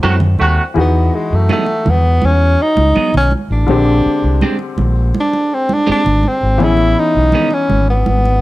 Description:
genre	lush 1970s-style soul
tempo	82 BPM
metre	4/4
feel	straight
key	unclear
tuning	A4 = 441 Hz
part	clear grand piano	accompaniment	0.0-8.4 s	D3 to G#4	-21 LUFS	left 4 dB	none
part	electric guitar at the edge of break-up	riff	0.0-7.5 s	D#3 to A4	-19 LUFS	right 4 dB	phaser
part	warm horn section	stabs	0.0-0.6 s	C3 to F#4	-16 LUFS	right 2 dB	none
part	overdriven fingered electric bass	bass	0.0-8.4 s	G#1 to F#2	-14 LUFS	equal	none
part	congas	percussion	0.0-8.4 s	none	-21 LUFS	right 3 dB	none
part	breathy tenor saxophone	melody	0.8-8.4 s	G#3 to E4	-15 LUFS	equal	none
room	small room ambience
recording	none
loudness	-11 LUFS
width	side -17 dB against mid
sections	0.8-8.4 A section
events	band accent 0.0-0.8; tenor saxophone solo 0.8-8.4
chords	0.0 D9; 0.8 Emaj9; 3.7 A#13; 6.6 Amaj9#11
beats	0.03 | 0.76 1.49 2.22 2.96 | 3.69 4.42 5.15 5.88 | 6.61 7.34 8.07

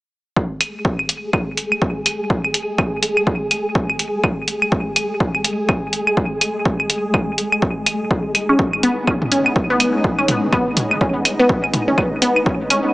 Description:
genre	minimal techno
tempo	124 BPM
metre	4/4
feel	swing 59% on 16ths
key	unclear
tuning	A4 = 440 Hz
part	electronic kick drum	drums	0.4-12.6 s	none	-20 LUFS	equal	none
part	flickering grainy texture	texture	0.8-12.9 s	G#3 to G#4	-24 LUFS	equal	built-in reverb, sidechain pumping
part	electronic hi-hat	drums	0.6-12.8 s	none	-19 LUFS	equal	none
part	electronic claves and toms	percussion	0.6-12.8 s	none	-21 LUFS	equal	overdrive, analog delay
part	resonant blip pluck	riff	8.5-12.8 s	B3 to C#4	-18 LUFS	equal	phaser, sidechain pumping, dub echo
room	moderate plate reverb, RT60 2.5 s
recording	echo-heavy mix, small speaker sound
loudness	-16 LUFS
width	side -20 dB against mid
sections	0.4-12.9 A section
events	none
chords	none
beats	| 0.36 0.85 1.33 1.82 | 2.30 2.78 3.27 3.75 | 4.24 4.72 5.20 5.69 | 6.17 6.66 7.14 7.62 | 8.11 8.59 9.07 9.56 | 10.04 10.53 11.01 11.49 | 11.98 12.46

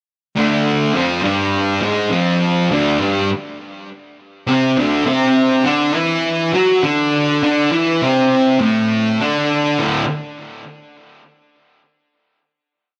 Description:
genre	rock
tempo	102 BPM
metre	4/4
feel	straight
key	unclear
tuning	A4 = 441 Hz
part	fuzz guitar	solo	0.4-10.0 s	D2 to F#4	-17 LUFS	equal	distortion, digital delay
room	moderate stone room reverb, RT60 0.9 s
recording	none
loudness	-16 LUFS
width	mono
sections	0.4-9.8 riff; 9.8-12.1 final chord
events	none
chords	0.4 Dmadd11; 5.1 Amadd11; 9.8 D5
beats	| 0.36 0.94 1.53 2.12 | 2.71 3.30 3.89 4.48 | 5.07 5.66 6.25 6.84 | 7.43 8.02 8.61 9.20 | 9.79

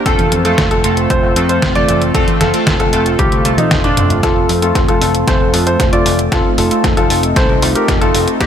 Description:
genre	italo disco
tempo	115 BPM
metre	4/4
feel	straight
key	unclear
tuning	A4 = 438 Hz
part	chorused polysynth	stabs	0.0-8.5 s	A3 to Bb4	-19 LUFS	right 2 dB	none
part	warm grand piano	melody	0.1-8.5 s	D4 to D5	-16 LUFS	left 1 dB	low-pass filter, ping-pong delay
part	lush unison pad	sustained chords	0.1-8.5 s	G3 to F4	-19 LUFS	equal	chorus
part	picked electric bass	bass	0.1-8.5 s	F1 to F2	-19 LUFS	equal	none
part	detuned 8-bit digital drum machine	drums	0.1-8.5 s	congas, hi-hat, snare drum, toms	-18 LUFS	equal	overdrive, high-pass filter on hats, high-pass filter on perc, high-pass filter on snare, high-pass filter on toms, high-pass filter on room
part	electronic kick drum	drums	0.1-8.5 s	none	-17 LUFS	equal	none
room	light reverb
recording	none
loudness	-10 LUFS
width	side -8 dB against mid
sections	0.0-4.2 A section; 4.2-8.5 B section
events	drum fill 3.2-4.2, 4.2-8.5; filter sweep on analog polysynth 4.2-8.5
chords	0.1 F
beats	| 0.06 0.58 1.10 1.62 | 2.15 2.67 3.19 3.71 | 4.23 4.75 5.28 5.80 | 6.32 6.84 7.36 7.88 | 8.41

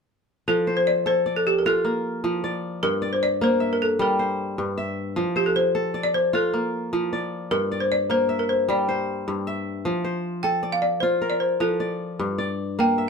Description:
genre	west african traditional, West African string and xylophone music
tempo	102 BPM (dotted quarters)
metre	12/8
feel	straight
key	F major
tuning	A4 = 440 Hz
part	balafon	melody	0.5-13.1 s	G4 to G5	-22 LUFS	left 1 dB	none
part	kora	arpeggios	0.5-13.1 s	G2 to E5	-25 LUFS	equal	none
room	moderate studio reverb, RT60 0.5 s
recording	band playing live in one room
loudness	-21 LUFS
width	side -5 dB against mid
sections	0.5-13.1 A section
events	none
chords	0.5 F; 2.8 Gm; 5.2 F; 7.5 Gm; 9.9 F; 12.2 Gm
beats	| 0.48 1.07 1.66 2.24 | 2.83 3.41 4.00 4.58 | 5.17 5.75 6.34 6.93 | 7.51 8.10 8.68 9.27 | 9.86 10.44 11.03 11.62 | 12.20 12.79

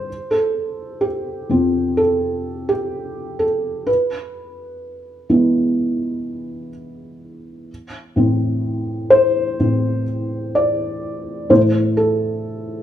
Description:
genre	pop ballad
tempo	63 BPM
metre	4/4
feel	straight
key	A minor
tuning	A4 = 440 Hz
part	felt-muted upright piano	solo	0.0-12.8 s	F2 to D5	-17 LUFS	equal	none
room	moderate large studio reverb, RT60 1.0 s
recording	band playing live in one room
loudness	-16 LUFS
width	side -11 dB against mid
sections	0.0-12.8 A section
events	felt piano solo 0.0-12.8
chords	0.1 Fadd9; 3.9 E; 7.7 Am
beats	| 0.07 1.03 1.98 2.93 | 3.88 4.84 5.79 6.74 | 7.69 8.64 9.60 10.55 | 11.50 12.46

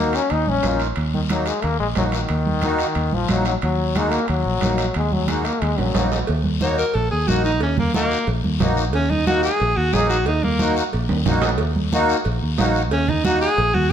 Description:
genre	latin, cumbia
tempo	181 BPM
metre	4/4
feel	straight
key	Eb minor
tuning	A4 = 440 Hz
part	bright trombone	second line	0.0-6.1 s	Eb3 to Eb4	-23 LUFS	left 4 dB	none
part	accordion	accompaniment	0.0-13.5 s	Bb3 to Ab4	-24 LUFS	equal	light tremolo tuning
part	fingered electric bass	bass	0.0-13.9 s	Bb1 to Eb2	-22 LUFS	equal	none
part	guiro	percussion	0.1-13.9 s	none	-32 LUFS	left 8 dB	none
part	timbales and cowbell	percussion	0.1-13.7 s	none	-30 LUFS	right 6 dB	none
part	congas	percussion	0.3-13.9 s	none	-26 LUFS	right 2 dB	none
part	breathy alto saxophone	melody	6.6-10.8, 12.9-13.9 s	Bb3 to Db5	-20 LUFS	equal	none
room	moderate large studio reverb, RT60 1.2 s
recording	none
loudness	-18 LUFS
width	side -9 dB against mid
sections	0.0-6.3 A section; 6.3-13.9 B section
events	trombone solo 0.0-6.3; drum fill 5.8-6.3, 11.1-11.6; alto saxophone solo 6.3-13.9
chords	0.0 Ebm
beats	0.31 0.64 | 0.97 1.30 1.64 1.97 | 2.30 2.63 2.96 3.30 | 3.63 3.96 4.29 4.62 | 4.96 5.29 5.62 5.95 | 6.29 6.62 6.95 7.28 | 7.61 7.95 8.28 8.61 | 8.94 9.27 9.60 9.94 | 10.27 10.60 10.93 11.26 | 11.60 11.93 12.26 12.59 | 12.92 13.26 13.59 13.92

